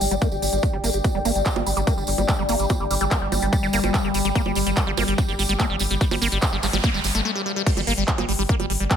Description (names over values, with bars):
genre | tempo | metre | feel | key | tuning
psychedelic trance | 145 BPM | 4/4 | straight | G minor | A4 = 441 Hz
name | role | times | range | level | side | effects
liquid acid bass | riff | 0.0-8.9 s | G3 to G4 | -26 LUFS | moving between left 3 dB and right 3 dB | phaser, auto-pan, sidechain pumping, digital delay
round analog bass | bass | 0.0-8.9 s | G1 | -26 LUFS | equal | none
big-room dance drum kit | drums | 0.0-9.0 s | bongos, crash cymbal, handclaps, hi-hat | -28 LUFS | right 2 dB | overdrive
tambourine | percussion | 0.0-7.2 s | none | -33 LUFS | right 5 dB | none
deep dark ambient pad | texture | 0.0-7.3 s | G4 to G5 | -29 LUFS | left 2 dB | chorus, built-in reverb, sidechain pumping
electronic kick drum | drums | 0.2-9.0 s | none | -23 LUFS | equal | overdrive
evolving wavetable pad | sustained chords | 1.3-9.0 s | G3 | -29 LUFS | left 2 dB | phaser, built-in reverb, sidechain pumping
noise sweep | sound effects | 6.3-7.7 s | none | -31 LUFS | right 2 dB | none
room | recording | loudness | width
light reverb, digital ambience | none | -19 LUFS | side -8 dB against mid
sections
0.0-7.7 A section; 7.7-9.0 B section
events
filter sweep on acid bass 0.0-7.7; noise sweep 6.3-7.7; break 7.3-7.7; drop 7.7-9.0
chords
0.0 G5